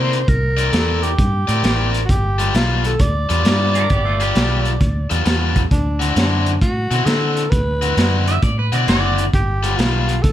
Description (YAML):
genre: electric blues shuffle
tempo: 133 BPM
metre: 4/4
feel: swing 66% on 8ths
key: unclear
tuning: A4 = 439 Hz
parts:
  - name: growling tenor saxophone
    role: melody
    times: 0.0-10.3 s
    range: D4 to D5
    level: -23 LUFS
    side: equal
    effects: none
  - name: cranked stack guitar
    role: riff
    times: 0.0-10.1 s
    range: D3 to D5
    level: -21 LUFS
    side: left 3 dB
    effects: overdrive
  - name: vintage muted fingered electric bass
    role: bass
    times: 0.0-10.3 s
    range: F#1 to D3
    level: -19 LUFS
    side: equal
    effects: none
  - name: crunchy breakbeat drum kit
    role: drums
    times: 0.1-10.3 s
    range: hi-hat, kick drum, snare drum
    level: -20 LUFS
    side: equal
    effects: none
  - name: electric guitar at the edge of break-up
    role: second line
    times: 3.7-4.6, 8.3-9.2 s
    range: A3 to E5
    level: -23 LUFS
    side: right 3 dB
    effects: harmonic tremolo
room: light reverb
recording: none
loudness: -15 LUFS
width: side -12 dB against mid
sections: 0.0-10.3 A section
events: none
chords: 0.0 C9; 2.1 G9; 5.7 D9; 9.3 G9